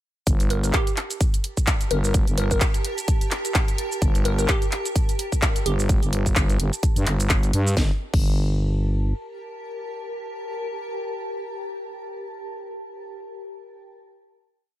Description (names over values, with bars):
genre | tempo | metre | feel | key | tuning
bass house | 128 BPM | 4/4 | swing 57% on 16ths | G minor | A4 = 441 Hz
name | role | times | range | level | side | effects
growling FM bass | bass | 0.3-9.1 s | G1 to G2 | -22 LUFS | equal | overdrive, sidechain pumping
electronic kick drum | drums | 0.3-8.3 s | none | -21 LUFS | equal | none
garage drum kit | drums | 0.3-8.3 s | crash cymbal, handclaps, hi-hat, shaker, snare drum | -27 LUFS | equal | none
granular cloud pad | texture | 1.2-12.3 s | G4 to A5 | -33 LUFS | equal | built-in reverb, sidechain pumping
glassy wavetable pluck | melody | 0.5-5.8 s | G4 to Bb4 | -29 LUFS | equal | chorus, digital delay
room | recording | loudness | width
little or no reverb | none | -20 LUFS | side -14 dB against mid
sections
0.3-7.8 drop; 7.8-11.5 final chord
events
drop 0.3-7.8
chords
0.3 Gmadd9